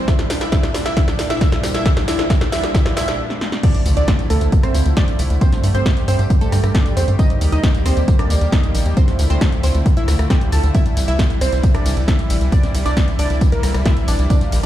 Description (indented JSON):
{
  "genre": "uplifting trance",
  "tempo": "135 BPM",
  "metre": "4/4",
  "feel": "straight",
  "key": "unclear",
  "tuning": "A4 = 442 Hz",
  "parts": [
    { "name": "wide unison pluck", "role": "melody", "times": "0.0-14.7 s", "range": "A3 to A5", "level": "-24 LUFS", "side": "right 1 dB", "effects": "sidechain pumping, tape echo" },
    { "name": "lush unison pad", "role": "sustained chords", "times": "0.0-14.7 s", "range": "Bb2 to G4", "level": "-26 LUFS", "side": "equal", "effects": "chorus, sidechain pumping" },
    { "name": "electronic kick drum", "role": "drums", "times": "0.1-14.4 s", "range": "none", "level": "-16 LUFS", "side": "equal", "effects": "none" },
    { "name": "punchy analog drum machine", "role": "drums", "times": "0.1-14.7 s", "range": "crash cymbal, hi-hat, ride cymbal, rim click, snare drum, tambourine", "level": "-24 LUFS", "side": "left 1 dB", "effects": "none" },
    { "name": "impact", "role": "sound effects", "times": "3.6-5.4 s", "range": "none", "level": "-25 LUFS", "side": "equal", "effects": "none" },
    { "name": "tight sequencer bass", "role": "bass", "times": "3.9-14.7 s", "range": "Bb1 to G2", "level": "-16 LUFS", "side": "equal", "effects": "sidechain pumping" }
  ],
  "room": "little or no reverb",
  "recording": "played on a big sound system in a bare room, large studio reverb",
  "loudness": "-14 LUFS",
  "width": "side -12 dB against mid",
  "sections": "0.0-3.6 A section; 3.6-14.7 B section",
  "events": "build-up 0.0-3.6; drum fill 0.0-3.2, 3.3-3.6; stop 3.2-3.6; drop 3.6-14.7; impact 3.6-5.4",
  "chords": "0.1 Bb6; 3.6 Dmadd9; 5.4 Gsus2; 7.2 Eb; 9.0 Dmadd9; 10.7 C"
}